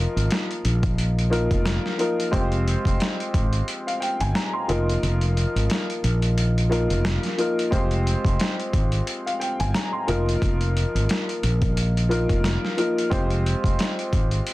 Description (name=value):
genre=hip hop, boom-bap hip-hop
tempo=89 BPM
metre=4/4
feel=swing 56% on 16ths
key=unclear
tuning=A4 = 439 Hz
part: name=warm upright piano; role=accompaniment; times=0.0-14.5 s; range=F3 to C6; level=-25 LUFS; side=left 1 dB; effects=cassette tape, high-pass filter, low-pass filter, plate reverb
part: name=mellow fretless electric bass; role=bass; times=0.0-14.4 s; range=F1 to Bb1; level=-22 LUFS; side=equal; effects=none
part: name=dusty soul sampler-style drum kit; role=drums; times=0.2-14.5 s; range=hi-hat, kick drum, snare drum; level=-26 LUFS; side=equal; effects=overdrive, vintage 12-bit sampler grit
room=light reverb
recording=dense, heavily limited modern master, vinyl crackle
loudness=-20 LUFS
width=side -18 dB against mid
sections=0.0-14.5 A section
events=kick muted 5.0-7.7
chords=0.0 Bbsus4; 2.3 Fmadd9; 4.7 Bbsus4/F; 7.7 Fmadd9; 10.1 Bbsus4/F; 13.1 Fmadd9